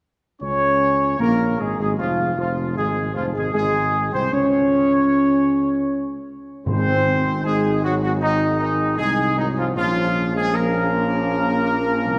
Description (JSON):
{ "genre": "classical", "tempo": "77 BPM", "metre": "4/4", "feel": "straight", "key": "Db major", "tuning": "A4 = 440 Hz", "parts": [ { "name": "warm trumpet section", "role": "melody", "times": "0.4-12.2 s", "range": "Eb4 to Db5", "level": "-24 LUFS", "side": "equal", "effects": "none" }, { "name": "mellow French horn section", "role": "sustained chords", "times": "0.4-12.2 s", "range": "F3 to Eb4", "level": "-28 LUFS", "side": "equal", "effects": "none" }, { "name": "warm trombone section", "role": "sustained chords", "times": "0.4-12.2 s", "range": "Eb3 to Db4", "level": "-27 LUFS", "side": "equal", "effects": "none" }, { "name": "dark tuba", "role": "bass", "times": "0.4-12.2 s", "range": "F1 to Db2", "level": "-27 LUFS", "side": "equal", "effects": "none" }, { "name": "timpani", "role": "percussion", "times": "6.7-7.8 s", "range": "Ab2", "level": "-29 LUFS", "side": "equal", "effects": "none" } ], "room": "wet church reverb, RT60 2.6 s", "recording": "none", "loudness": "-20 LUFS", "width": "mono", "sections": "0.4-12.2 A section", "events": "none", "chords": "0.4 Db; 6.7 Ab; 9.8 Bbm" }